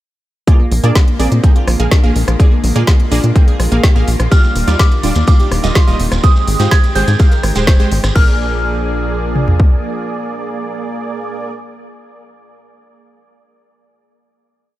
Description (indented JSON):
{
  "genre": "progressive house",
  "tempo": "125 BPM",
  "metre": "4/4",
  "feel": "straight",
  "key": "Bb mixolydian",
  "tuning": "A4 = 441 Hz",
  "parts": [
    { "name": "lush unison pad", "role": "sustained chords", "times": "0.5-11.5 s", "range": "D3 to Ab4", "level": "-25 LUFS", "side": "left 1 dB", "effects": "chorus, sidechain pumping" },
    { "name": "glassy wavetable pluck", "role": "arpeggios", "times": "0.5-11.5 s", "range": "Ab3 to C5", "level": "-23 LUFS", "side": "equal", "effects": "chorus, sidechain pumping, tape echo" },
    { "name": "supersaw stab", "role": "stabs", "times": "0.5-11.5 s", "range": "G3 to G5", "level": "-22 LUFS", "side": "right 3 dB", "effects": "sidechain pumping, tape echo" },
    { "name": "deep house drum kit", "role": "drums", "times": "0.5-8.3 s", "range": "crash cymbal, hi-hat, rim click, snare drum", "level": "-21 LUFS", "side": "equal", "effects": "studio reverb" },
    { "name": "house drum kit", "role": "drums", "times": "0.5-9.7 s", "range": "kick drum, toms", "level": "-10 LUFS", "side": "equal", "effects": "overdrive, studio reverb" },
    { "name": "tight sequencer bass", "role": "bass", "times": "0.7-9.6 s", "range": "Eb1 to Bb2", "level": "-15 LUFS", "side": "equal", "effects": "sidechain pumping" },
    { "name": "glassy synth bell", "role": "melody", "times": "4.3-11.5 s", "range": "C6 to Ab6", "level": "-21 LUFS", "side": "right 1 dB", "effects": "chorus, phaser, sidechain pumping, tape echo" },
    { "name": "shekere", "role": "percussion", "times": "4.3-8.1 s", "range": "none", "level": "-29 LUFS", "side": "right 4 dB", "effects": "none" }
  ],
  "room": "digital ambience",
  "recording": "none",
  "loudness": "-10 LUFS",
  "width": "side -15 dB against mid",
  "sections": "0.5-8.2 drop; 8.2-12.0 final chord",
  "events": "drop 0.5-8.2",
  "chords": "0.5 Bb7; 4.3 Ebmaj9; 6.2 Abmaj7; 8.2 Bb7"
}